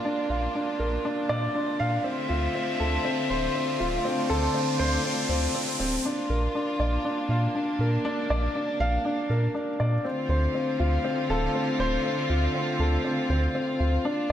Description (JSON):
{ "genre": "piano and strings electronica", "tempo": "120 BPM", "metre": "4/4", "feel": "straight", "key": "D minor", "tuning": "A4 = 441 Hz", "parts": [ { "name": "warm chamber string section", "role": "sustained chords", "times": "0.0-14.3 s", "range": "D3 to E5", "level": "-30 LUFS", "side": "equal", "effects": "none" }, { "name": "warm upright piano", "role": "riff", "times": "0.0-14.3 s", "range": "C4 to F5", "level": "-27 LUFS", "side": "left 1 dB", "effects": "digital delay" }, { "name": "riser", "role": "sound effects", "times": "1.0-6.0 s", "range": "none", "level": "-34 LUFS", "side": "right 1 dB", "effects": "none" }, { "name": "warm sub bass", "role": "bass", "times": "0.3-14.3 s", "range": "D1 to Bb2", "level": "-26 LUFS", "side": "right 1 dB", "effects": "tube saturation" } ], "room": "moderate scoring stage reverb, RT60 1.7 s, studio reverb", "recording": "none", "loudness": "-24 LUFS", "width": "side -10 dB against mid", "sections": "0.0-6.0 A section; 6.0-14.3 B section", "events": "build-up 0.0-6.0; riser 1.0-6.0; drop 6.0-14.3", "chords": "0.0 Bb; 2.0 Dm7; 6.0 Bb; 10.0 Dm7" }